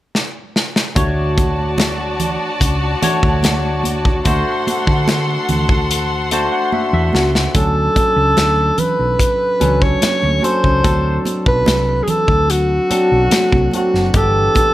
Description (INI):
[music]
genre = lush 1970s-style soul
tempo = 73 BPM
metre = 4/4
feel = straight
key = D major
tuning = A4 = 441 Hz
[part]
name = modern studio drum kit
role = drums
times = 0.1-14.7 s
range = hi-hat, kick drum, snare drum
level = -18 LUFS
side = equal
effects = none
[part]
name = warm studio violin section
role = second line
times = 1.0-7.5 s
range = F#4 to C6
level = -22 LUFS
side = left 1 dB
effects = none
[part]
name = barky tine electric piano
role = accompaniment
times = 1.0-14.7 s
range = E3 to A5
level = -20 LUFS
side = left 1 dB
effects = overdrive, wide subtle chorus
[part]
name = hollow-body short-scale fingered electric bass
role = bass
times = 1.0-14.5 s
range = F#1 to D3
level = -18 LUFS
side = equal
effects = none
[part]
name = congas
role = percussion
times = 1.0-14.7 s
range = none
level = -25 LUFS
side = right 4 dB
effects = none
[part]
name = breathy alto saxophone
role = melody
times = 7.1-14.7 s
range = F#4 to C#5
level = -16 LUFS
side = equal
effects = none
[sound]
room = light reverb, small room ambience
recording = none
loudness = -13 LUFS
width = side -14 dB against mid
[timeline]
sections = 1.0-7.5 A section; 7.5-14.7 B section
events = drum fill 0.1-1.0, 6.7-7.5; tine electric piano fill 5.9-7.5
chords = 0.0 N.C.; 1.0 Dmaj7; 4.3 D7; 7.5 Dmaj7; 10.8 D7; 14.1 G6